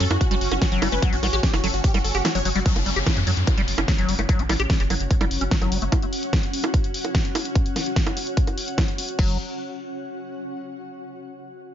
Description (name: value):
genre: psychedelic trance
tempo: 147 BPM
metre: 4/4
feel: straight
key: unclear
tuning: A4 = 438 Hz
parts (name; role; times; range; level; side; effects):
- supersaw stab; melody; 0.0-2.6 s; F#4 to C#5; -28 LUFS; equal; phaser, sidechain pumping, ping-pong delay
- bubbling stepped-filter texture; sustained chords; 0.0-2.7 s; C#4; -33 LUFS; right 3 dB; chorus, built-in reverb, sidechain pumping
- liquid acid bass; riff; 0.0-5.8, 9.2-9.4 s; E3 to G4; -27 LUFS; moving between left 6 dB and right 5 dB; chorus, auto-pan, vintage 12-bit sampler grit, sidechain pumping, ping-pong delay
- round analog bass; bass; 0.0-5.9, 9.2-9.4 s; F#1 to F#2; -25 LUFS; equal; none
- big-room dance drum kit; drums; 0.0-9.3 s; bongos, crash cymbal, hi-hat, snare drum; -27 LUFS; right 1 dB; small room ambience
- granular cloud pad; texture; 0.0-10.8 s; C#4 to F#5; -32 LUFS; left 1 dB; built-in reverb, sidechain pumping
- electronic kick drum; drums; 0.2-9.3 s; none; -22 LUFS; equal; small room ambience
- downlifter; sound effects; 2.7-5.9 s; none; -32 LUFS; left 1 dB; none
room: light reverb, digital ambience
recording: nothing above 7.5 kHz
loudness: -20 LUFS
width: side -10 dB against mid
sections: 0.0-2.7 A section; 2.7-9.2 B section; 9.2-10.8 C section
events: drop 0.0-2.7; kick drops out 2.2-2.7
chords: 0.0 F#5